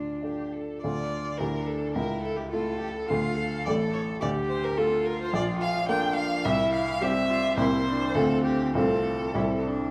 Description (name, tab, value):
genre	quick classical-period movement for piano trio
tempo	98-109 BPM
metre	2/4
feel	rubato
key	D minor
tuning	A4 = 440 Hz
part	rich violin	melody	0.0-9.6 s	F4 to G5	-32 LUFS	equal	none
part	rich cello	second line	0.0-9.9 s	C4 to A4	-35 LUFS	equal	none
part	warm baby grand piano	accompaniment	0.0-9.9 s	A1 to A4	-30 LUFS	equal	none
room	wet recital hall reverb, RT60 1.7 s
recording	vinyl crackle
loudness	-27 LUFS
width	mono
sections	0.8-9.9 A section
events	none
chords	0.0 Dm; 1.4 Em7b5/D; 2.0 A/C#; 3.1 Dm; 3.7 A5; 4.2 Dm; 5.3 Bbmaj7; 6.5 C; 7.6 C7; 8.2 Dm7; 8.8 F/C; 9.4 C